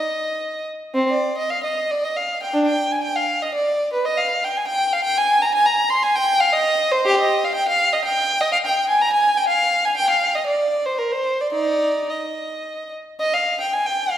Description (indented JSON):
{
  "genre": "classical, baroque-style suite movement for unaccompanied violin",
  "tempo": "101-126 BPM",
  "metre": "3/4",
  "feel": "rubato",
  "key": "Eb major from 7.0 s",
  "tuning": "A4 = 441 Hz",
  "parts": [
    { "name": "warm violin", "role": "solo", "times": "0.0-14.2 s", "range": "C4 to C6", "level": "-18 LUFS", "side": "equal", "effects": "none" }
  ],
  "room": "wet scoring stage reverb, RT60 1.6 s",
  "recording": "heard from further back in the room",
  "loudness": "-17 LUFS",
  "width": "side -11 dB against mid",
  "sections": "0.9-13.2 A section",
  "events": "none",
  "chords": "none"
}